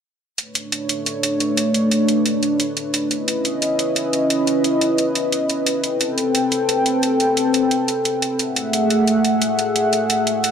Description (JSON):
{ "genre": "liquid drum and bass", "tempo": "176 BPM", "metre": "4/4", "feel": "straight", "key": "unclear", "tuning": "A4 = 441 Hz", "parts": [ { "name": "warm analog pad", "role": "sustained chords", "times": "0.4-10.5 s", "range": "A3 to G5", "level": "-18 LUFS", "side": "equal", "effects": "chorus" }, { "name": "electronic hi-hat", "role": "drums", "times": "0.4-10.5 s", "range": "none", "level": "-22 LUFS", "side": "right 1 dB", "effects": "small room ambience" } ], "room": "moderate lush hall reverb, RT60 2.0 s", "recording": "none", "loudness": "-17 LUFS", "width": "side -7 dB against mid", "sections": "0.4-10.5 A section", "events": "none", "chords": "0.4 Bm9; 3.1 C#m9; 5.8 Am9; 8.4 F#m9" }